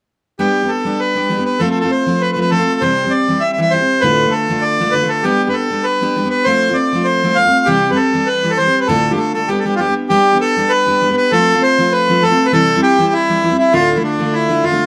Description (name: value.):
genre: celtic folk, Celtic reel.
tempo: 198 BPM.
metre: 4/4.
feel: swing 53% on 8ths.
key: G mixolydian.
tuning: A4 = 445 Hz.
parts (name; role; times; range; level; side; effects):
accordion; melody; 0.4-14.9 s; D4 to F5; -16 LUFS; equal; plate reverb.
picked steel-string acoustic guitar; accompaniment; 0.4-14.9 s; D2 to G4; -19 LUFS; equal; none.
room: moderate studio reverb, RT60 0.7 s.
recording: none.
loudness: -15 LUFS.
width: mono.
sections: 0.4-10.1 A section; 10.1-14.9 A section.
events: none.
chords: 0.4 G; 1.6 F; 2.8 C; 4.0 Dm; 5.2 G; 6.5 F; 7.7 C; 8.9 Dm; 9.5 G; 11.3 F; 12.5 C; 13.7 Dm.